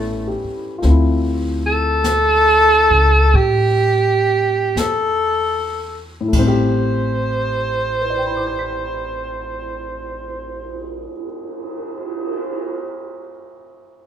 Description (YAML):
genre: jazz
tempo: 36-52 BPM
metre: 4/4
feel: swing 66% on 8ths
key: A minor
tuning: A4 = 440 Hz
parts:
  - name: breathy alto saxophone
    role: melody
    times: 0.0-11.1 s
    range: A3 to C5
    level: -17 LUFS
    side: right 1 dB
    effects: none
  - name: warm baby grand piano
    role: accompaniment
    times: 0.0-14.1 s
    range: A2 to B6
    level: -23 LUFS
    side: left 3 dB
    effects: none
  - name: upright bass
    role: bass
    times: 0.0-11.1 s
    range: A1 to A2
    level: -20 LUFS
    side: equal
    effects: none
  - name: jazz brush drum kit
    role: drums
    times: 0.8-12.6 s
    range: brushed snare drum, crash cymbal, cymbal swell, hi-hat, kick drum, snare drum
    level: -27 LUFS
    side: equal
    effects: none
room: light reverb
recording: minimal, uncompressed stereo recording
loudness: -15 LUFS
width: side -9 dB against mid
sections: 0.8-6.3 A section; 6.3-13.0 B section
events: slowing down 0.0-6.3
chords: 0.0 A7; 0.8 Dm7; 6.3 Am9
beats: | 0.82 2.03 3.34 4.76 | 6.33 8.00 9.66 11.32